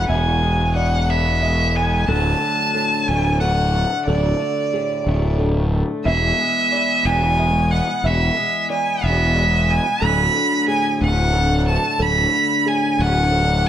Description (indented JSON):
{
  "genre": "post-rock",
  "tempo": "60 BPM (dotted quarters)",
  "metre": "6/8",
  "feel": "straight",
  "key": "D lydian",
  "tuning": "A4 = 437 Hz",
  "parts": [
    { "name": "warm violin", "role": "melody", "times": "0.0-13.7 s", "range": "D5 to B5", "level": "-19 LUFS", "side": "right 2 dB", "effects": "tape echo" },
    { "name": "felt-muted upright piano", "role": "arpeggios", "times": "0.0-13.7 s", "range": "G#4 to E5", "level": "-31 LUFS", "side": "right 3 dB", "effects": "tape echo" },
    { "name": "twangy electric guitar", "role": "arpeggios", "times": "0.0-13.7 s", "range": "D2 to B3", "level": "-26 LUFS", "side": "left 4 dB", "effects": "spring reverb, tape echo" },
    { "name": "fuzz fingered electric bass", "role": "bass", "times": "0.0-13.7 s", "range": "D1 to E1", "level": "-19 LUFS", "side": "equal", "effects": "overdrive" },
    { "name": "pedal steel guitar", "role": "sustained chords", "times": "2.1-13.7 s", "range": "D3 to G#4", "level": "-31 LUFS", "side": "left 2 dB", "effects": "none" }
  ],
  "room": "light reverb, small room ambience",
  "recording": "none",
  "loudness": "-16 LUFS",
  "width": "side -10 dB against mid",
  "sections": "0.0-2.1 A section; 2.1-13.7 A section",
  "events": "none",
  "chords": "0.0 E; 2.1 D; 6.1 E; 10.0 D",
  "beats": "| 0.09 1.08 | 2.08 3.07 | 4.07 5.06 | 6.05 7.04 | 8.04 9.03 | 10.02 11.01 | 12.00 12.99"
}